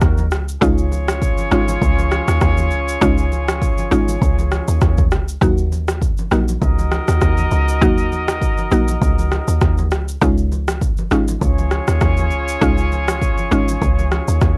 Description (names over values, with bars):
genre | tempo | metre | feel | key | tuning
afrobeats | 100 BPM | 4/4 | swing 55% on 16ths | Db major | A4 = 442 Hz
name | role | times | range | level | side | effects
clear horn section | second line | 0.0-14.6 s | Bb3 to Eb5 | -26 LUFS | equal | none
deep log drum bass | bass | 0.0-14.6 s | Ab1 to Eb2 | -21 LUFS | equal | none
afro-pop drum kit | drums | 0.0-14.6 s | kick drum, rim click, shaker | -21 LUFS | equal | cassette tape
congas | percussion | 0.0-14.6 s | none | -33 LUFS | equal | none
mallet-like synth pluck | accompaniment | 0.6-13.7 s | Gb3 to Gb4 | -20 LUFS | equal | chorus
room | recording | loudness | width
little or no reverb | home recording on cassette | -17 LUFS | mono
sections
0.0-14.6 A section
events
none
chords
0.0 Ebm; 0.6 Dbadd9; 5.4 Ebm; 10.2 Dbadd9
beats
0.02 | 0.62 1.22 1.82 2.42 | 3.02 3.62 4.22 4.82 | 5.42 6.02 6.62 7.22 | 7.82 8.42 9.02 9.62 | 10.22 10.82 11.42 12.02 | 12.62 13.22 13.82 14.42